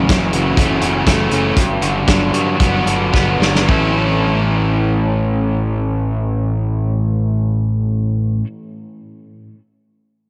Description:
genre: rock, shoegaze and dream pop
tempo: 106-125 BPM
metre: 4/4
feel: straight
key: A major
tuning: A4 = 435 Hz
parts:
  - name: direct-recorded clean electric guitar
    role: arpeggios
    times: 0.0-8.5 s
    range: E3 to F#4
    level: -29 LUFS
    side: equal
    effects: none
  - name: crunchy overdriven guitar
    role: riff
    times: 0.0-8.5 s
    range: F#2 to A4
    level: -22 LUFS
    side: equal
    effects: subtle chorus, cassette tape
  - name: overdriven semi-hollow guitar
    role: riff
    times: 0.0-8.5 s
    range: F#2 to A4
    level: -21 LUFS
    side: equal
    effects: reverse reverb, cassette tape
  - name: modern bright fingered electric bass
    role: bass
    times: 0.0-8.4 s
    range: F#1 to G2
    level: -24 LUFS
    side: equal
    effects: none
  - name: loose indie drum kit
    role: drums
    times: 0.1-3.8 s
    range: hi-hat, kick drum, snare drum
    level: -18 LUFS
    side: equal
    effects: cassette tape
room: light reverb, small room ambience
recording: home recording on cassette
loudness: -16 LUFS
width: mono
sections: 0.0-3.7 A section; 3.7-8.2 B section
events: slowing down 0.0-3.7; drum fill 3.1-3.7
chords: 0.0 F#m7; 1.6 Gmaj7; 3.7 A

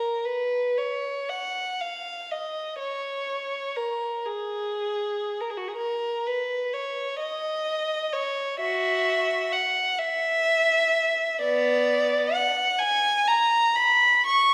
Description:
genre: classical, free, expressive piece for unaccompanied violin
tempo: 38-43 BPM (dotted quarters)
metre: 6/8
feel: rubato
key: F# major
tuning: A4 = 440 Hz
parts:
  - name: warm violin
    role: solo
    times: 0.0-14.5 s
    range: B3 to C#6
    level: -25 LUFS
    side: equal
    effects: none
room: wet recital hall reverb, RT60 1.7 s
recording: heard from further back in the room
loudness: -25 LUFS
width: mono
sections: 0.0-14.5 A section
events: none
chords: none

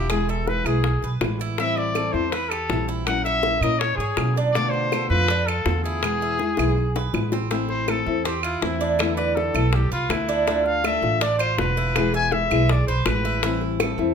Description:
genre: latin, Cuban son and guajira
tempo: 162 BPM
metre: 4/4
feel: straight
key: A minor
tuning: A4 = 443 Hz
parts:
  - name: clear trumpet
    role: melody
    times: 0.0-13.6 s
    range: E4 to G#5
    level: -25 LUFS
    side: left 2 dB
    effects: none
  - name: nylon-string guitar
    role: accompaniment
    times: 0.0-14.1 s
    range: B2 to F4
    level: -27 LUFS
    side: left 6 dB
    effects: none
  - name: Cuban tres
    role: arpeggios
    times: 0.0-14.1 s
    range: C4 to E5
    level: -28 LUFS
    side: right 6 dB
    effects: none
  - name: upright bass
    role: bass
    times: 0.0-14.1 s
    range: E1 to B2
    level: -25 LUFS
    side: right 2 dB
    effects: none
  - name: bongos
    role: percussion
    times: 0.1-14.1 s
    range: none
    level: -28 LUFS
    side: left 4 dB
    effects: none
  - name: claves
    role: percussion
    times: 0.1-14.0 s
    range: none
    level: -31 LUFS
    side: right 6 dB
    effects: none
room: light reverb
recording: minimal, uncompressed stereo recording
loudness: -20 LUFS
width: side -7 dB against mid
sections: 0.0-7.5 A section; 7.5-14.1 B section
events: drum fill 6.6-7.5; trumpet solo 7.5-14.1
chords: 0.1 E; 1.6 Am7; 3.1 F#7/A#; 4.5 Bm7b5; 6.0 E; 7.5 Am; 9.0 E7sus4; 10.5 Dm; 12.0 E; 13.4 Am7

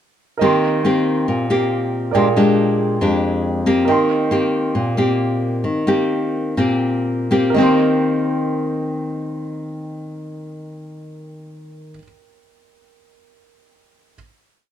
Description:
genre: bossa nova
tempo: 118-138 BPM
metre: 4/4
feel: straight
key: Eb major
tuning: A4 = 440 Hz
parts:
  - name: nylon-string guitar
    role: accompaniment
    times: 0.4-12.0 s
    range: F2 to G4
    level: -17 LUFS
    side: left 2 dB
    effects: none
  - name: warm concert grand piano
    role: accompaniment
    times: 0.4-14.2 s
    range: Ab4 to C6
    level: -22 LUFS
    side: right 7 dB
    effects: none
room: light reverb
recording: dark, warm production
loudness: -16 LUFS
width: side -10 dB against mid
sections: 0.4-7.6 A section; 7.6-11.6 final chord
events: slowing down 3.9-7.6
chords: 0.4 Eb6; 2.1 Bb13; 3.9 Eb6

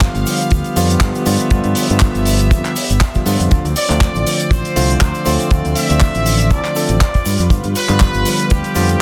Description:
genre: nu-disco, nu disco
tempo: 120 BPM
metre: 4/4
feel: swing 55% on 16ths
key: unclear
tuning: A4 = 444 Hz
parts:
  - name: bell-like tine electric piano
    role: accompaniment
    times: 0.0-9.0 s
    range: D3 to A4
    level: -22 LUFS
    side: equal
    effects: digital delay
  - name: rich chamber string section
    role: sustained chords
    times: 0.0-9.0 s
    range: G3 to F5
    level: -26 LUFS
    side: equal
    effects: vintage 12-bit sampler grit, sidechain pumping
  - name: fingered electric bass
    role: bass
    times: 0.0-8.9 s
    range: G1 to G2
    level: -20 LUFS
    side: equal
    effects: tube saturation, sidechain pumping
  - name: damped 70s drum kit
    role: drums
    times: 0.0-9.0 s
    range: handclaps, hi-hat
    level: -23 LUFS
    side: equal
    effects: studio reverb
  - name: kick drum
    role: drums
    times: 0.0-8.6 s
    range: none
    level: -16 LUFS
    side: equal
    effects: studio reverb, soft clipping on snare
  - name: egg shaker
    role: percussion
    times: 0.0-9.0 s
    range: none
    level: -33 LUFS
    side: equal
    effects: none
  - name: clear trumpet section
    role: melody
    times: 3.8-9.0 s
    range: G4 to E5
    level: -24 LUFS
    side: equal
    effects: digital delay
room: small room ambience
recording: dense, heavily limited modern master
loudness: -15 LUFS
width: mono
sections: 0.0-9.0 A section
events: none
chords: 0.0 G7; 3.5 Dm7; 7.3 G7

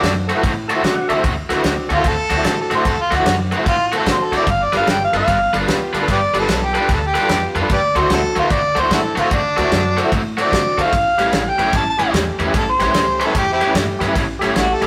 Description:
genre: electric blues shuffle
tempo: 149 BPM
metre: 4/4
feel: swing 64% on 8ths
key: D mixolydian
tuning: A4 = 439 Hz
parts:
  - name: warm harmonica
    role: melody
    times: 0.0-14.9 s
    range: C4 to A5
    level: -20 LUFS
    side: equal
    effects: overdrive
  - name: percussive tonewheel organ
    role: accompaniment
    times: 0.0-14.9 s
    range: C#4 to A5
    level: -27 LUFS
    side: equal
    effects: slow rotary speaker
  - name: cranked stack guitar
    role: riff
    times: 0.0-14.9 s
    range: A2 to B4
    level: -24 LUFS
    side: equal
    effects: overdrive
  - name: mellow saxophone section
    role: stabs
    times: 0.0-14.9 s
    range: A3 to G4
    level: -28 LUFS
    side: equal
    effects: none
  - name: upright bass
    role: bass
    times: 0.0-14.9 s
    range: G1 to C3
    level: -27 LUFS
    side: equal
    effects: none
  - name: natural country drum kit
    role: drums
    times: 0.0-14.9 s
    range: kick drum, ride cymbal, snare drum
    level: -24 LUFS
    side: equal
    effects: none
room: moderate stone room reverb, RT60 1.0 s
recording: rough rehearsal-room recording, warm saturation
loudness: -17 LUFS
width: mono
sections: 0.0-14.9 A section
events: harmonica solo 0.0-14.9; tonewheel organ fill 0.4-1.2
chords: 0.0 D7; 4.5 G7; 7.7 D7; 10.9 A7

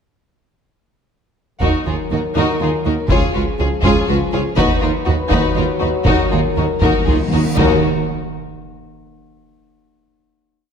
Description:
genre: cinematic, epic orchestral film score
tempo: 121 BPM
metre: 3/4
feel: straight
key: Eb minor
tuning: A4 = 440 Hz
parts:
  - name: warm symphonic violin section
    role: melody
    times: 1.6-7.9 s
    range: Ab4 to Db5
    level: -26 LUFS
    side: left 5 dB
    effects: none
  - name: rich symphonic violin section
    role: second line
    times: 1.6-7.9 s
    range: F4 to Ab4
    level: -24 LUFS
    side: left 4 dB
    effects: none
  - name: warm symphonic viola section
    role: accompaniment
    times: 1.6-7.9 s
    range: Eb4 to F4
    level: -22 LUFS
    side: right 1 dB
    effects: none
  - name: mellow French horn section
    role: sustained chords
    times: 1.6-7.8 s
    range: F3 to B4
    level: -23 LUFS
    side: left 5 dB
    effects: none
  - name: dark symphonic double bass section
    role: bass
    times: 1.6-7.9 s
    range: Db2 to Eb2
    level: -23 LUFS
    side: right 4 dB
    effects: none
  - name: dark tuba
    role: bass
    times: 1.6-7.8 s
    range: Db2 to Eb2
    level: -24 LUFS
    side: right 4 dB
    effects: none
  - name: warm symphonic cello section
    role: bass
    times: 1.6-7.9 s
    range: Db2 to Eb2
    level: -24 LUFS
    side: right 3 dB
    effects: none
  - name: taiko ensemble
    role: drums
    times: 1.6-7.7 s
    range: none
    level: -20 LUFS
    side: equal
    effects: none
  - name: timpani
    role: percussion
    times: 6.1-7.8 s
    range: Eb3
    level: -24 LUFS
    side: equal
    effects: none
  - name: reverse cymbal and impact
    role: sound effects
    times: 7.1-9.1 s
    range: none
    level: -31 LUFS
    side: equal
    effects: none
room: moderate scoring stage reverb, RT60 1.6 s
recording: none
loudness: -14 LUFS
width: side -7 dB against mid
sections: 1.6-7.6 theme; 7.6-9.1 final chord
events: timpani fill 6.1-7.6; reverse cymbal 7.1-7.6; impact 7.6-9.1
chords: 1.6 Ebm; 3.1 Db; 4.6 B/D#; 6.1 Ebm

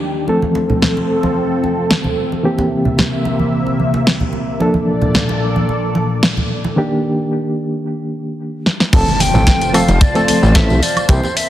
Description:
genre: nu-disco, nu disco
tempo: 111 BPM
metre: 4/4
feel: straight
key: F major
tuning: A4 = 440 Hz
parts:
  - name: overdriven reed electric piano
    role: accompaniment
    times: 0.0-11.3 s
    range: Eb3 to A4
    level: -19 LUFS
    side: equal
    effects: fast tremolo, sidechain pumping, ping-pong delay
  - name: lush unison pad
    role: sustained chords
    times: 0.0-11.5 s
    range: Bb2 to A5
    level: -20 LUFS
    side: equal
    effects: chorus, phaser, sidechain pumping
  - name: congas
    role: percussion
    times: 0.3-11.3 s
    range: none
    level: -21 LUFS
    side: right 2 dB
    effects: none
  - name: house drum kit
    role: drums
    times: 0.8-11.5 s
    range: crash cymbal, hi-hat, snare drum, tambourine, woodblock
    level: -18 LUFS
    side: equal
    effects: none
  - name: silver concert flute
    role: melody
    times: 8.9-11.5 s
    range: C5 to A5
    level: -19 LUFS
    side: left 1 dB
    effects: dub echo
  - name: fat analog bass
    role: bass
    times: 8.9-11.2 s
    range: F1 to C2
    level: -13 LUFS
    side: equal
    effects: tube saturation
  - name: kick drum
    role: drums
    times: 8.9-11.2 s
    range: none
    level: -12 LUFS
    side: equal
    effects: none
  - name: impact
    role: sound effects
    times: 8.9-11.1 s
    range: none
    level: -22 LUFS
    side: equal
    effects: none
room: moderate plate reverb, RT60 1.9 s, studio ambience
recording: heavily compressed radio sound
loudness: -13 LUFS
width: side -12 dB against mid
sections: 0.0-8.9 A section; 8.9-11.5 B section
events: break 6.8-8.9; drum fill 8.7; drop 8.9-11.5; impact 8.9-11.1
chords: 0.3 F; 2.4 C7; 4.6 Bbmaj7; 6.8 Ebmaj7; 8.9 F

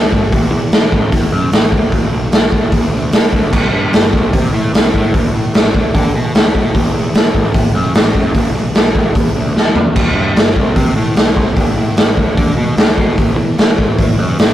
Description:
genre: punk rock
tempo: 150 BPM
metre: 4/4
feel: straight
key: unclear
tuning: A4 = 436 Hz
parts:
  - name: fuzz picked electric bass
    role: bass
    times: 0.0-14.5 s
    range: E1 to D3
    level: -18 LUFS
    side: equal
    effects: overdrive
  - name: raw garage drum kit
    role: drums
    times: 0.1-14.5 s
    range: crash cymbal, hi-hat, kick drum, snare drum, toms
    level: -11 LUFS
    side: equal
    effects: none
room: light reverb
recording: rough rehearsal-room recording, warm saturation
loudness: -10 LUFS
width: side -12 dB against mid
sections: 0.0-14.5 A section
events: drum fill 9.6-10.0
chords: none

